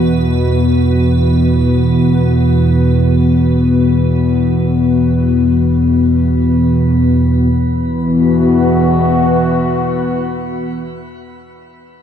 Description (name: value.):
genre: dark ambient drone.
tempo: free time.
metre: none.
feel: none.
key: unclear.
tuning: A4 = 442 Hz.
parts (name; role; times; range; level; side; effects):
sweeping resonant pad; sustained chords; 0.0-11.1 s; E3 to F#4; -14 LUFS; left 3 dB; wide subtle chorus, shimmer reverb.
analog drone; drone; 0.0-10.8 s; E2 to B2; -13 LUFS; right 2 dB; chorus.
icy glass pad; texture; 0.0-7.5 s; B4; -30 LUFS; right 6 dB; chorus, built-in reverb, shimmer reverb.
room: wet plate reverb, RT60 2.7 s.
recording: none.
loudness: -10 LUFS.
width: side -8 dB against mid.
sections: 0.0-7.5 A section; 7.5-11.5 B section.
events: fade-out on ambient pad 0.0-7.5.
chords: 0.0 Esus2.